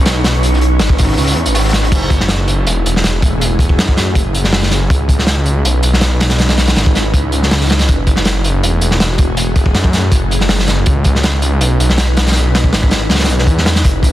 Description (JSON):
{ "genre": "drum and bass, jungle", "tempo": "161 BPM", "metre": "4/4", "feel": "straight", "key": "F# minor", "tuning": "A4 = 440 Hz", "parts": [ { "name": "ethereal airy pad", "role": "sustained chords", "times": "0.0-14.1 s", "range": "A3 to B4", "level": "-21 LUFS", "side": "equal", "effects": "ensemble chorus, built-in reverb" }, { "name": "detuned saw bass", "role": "bass", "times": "0.0-14.1 s", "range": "E1 to F#2", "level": "-14 LUFS", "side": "equal", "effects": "none" }, { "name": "wind-like tuned noise texture", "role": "texture", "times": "0.0-1.9 s", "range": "C#6", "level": "-26 LUFS", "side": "right 1 dB", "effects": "built-in reverb" }, { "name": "crunchy breakbeat drum kit", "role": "drums", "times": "0.1-14.1 s", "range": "crash cymbal, hi-hat, kick drum, snare drum", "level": "-13 LUFS", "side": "equal", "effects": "none" }, { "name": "crunchy breakbeat drum kit", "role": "drums", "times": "0.1-1.9, 13.9-14.1 s", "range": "hi-hat, snare drum", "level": "-23 LUFS", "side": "left 1 dB", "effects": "high-pass filter on hats, high-pass filter on snare, high-pass filter on room" } ], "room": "small room ambience", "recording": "dense, heavily limited modern master, vinyl crackle", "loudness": "-10 LUFS", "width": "side -14 dB against mid", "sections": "0.0-1.9 A section; 1.9-14.1 A section", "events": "drop 0.0-1.9, 1.9-14.1; kick drops out 1.2-1.9", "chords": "0.0 C#m9; 1.9 F#m9; 4.9 C#m9; 7.9 F#m9; 10.9 C#m9" }